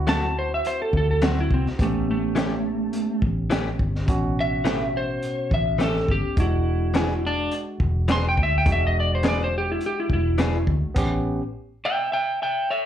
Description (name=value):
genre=straight-eighth soul blues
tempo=105 BPM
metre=4/4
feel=straight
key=A mixolydian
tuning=A4 = 444 Hz
part: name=barky tine electric piano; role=accompaniment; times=0.0-11.4 s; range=B2 to G4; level=-31 LUFS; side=right 1 dB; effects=slapback echo
part: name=vintage muted fingered electric bass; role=bass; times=0.0-11.4 s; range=E1 to D2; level=-25 LUFS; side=equal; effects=none
part: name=electric slide guitar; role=melody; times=0.1-12.9 s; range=A3 to C6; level=-24 LUFS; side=equal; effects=slapback echo
part: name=direct-recorded clean electric guitar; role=stabs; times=0.1-10.6 s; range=E3 to G#4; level=-28 LUFS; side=left 5 dB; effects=slapback echo
part: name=crunchy breakbeat drum kit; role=drums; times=0.1-11.1 s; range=crash cymbal, hi-hat, kick drum, snare drum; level=-25 LUFS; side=equal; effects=none
room=light reverb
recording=live gig heard through the venue's PA, club reverb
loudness=-21 LUFS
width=side -10 dB against mid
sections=0.0-12.9 A section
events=electric slide guitar solo 0.0-12.9; stop 11.0-12.9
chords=0.0 D7; 1.8 A7; 6.4 E7; 11.0 A7